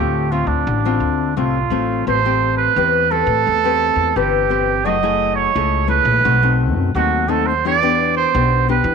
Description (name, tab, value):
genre	samba and choro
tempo	86 BPM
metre	4/4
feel	straight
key	A minor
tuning	A4 = 440 Hz
part	warm trumpet	melody	0.0-8.9 s	D4 to D#5	-17 LUFS	right 10 dB	none
part	nylon-string guitar	accompaniment	0.0-8.9 s	A2 to B4	-20 LUFS	left 13 dB	none
part	upright bass	bass	0.0-8.9 s	F#1 to E3	-21 LUFS	left 1 dB	none
room	light reverb, small room ambience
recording	1960s-style stereo with parts hard left and right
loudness	-14 LUFS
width	side -6 dB against mid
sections	0.0-2.1 A section; 2.1-8.9 B section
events	none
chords	0.0 Dm7; 2.1 Am9; 4.9 F#m9; 6.3 B7b9; 7.7 Em7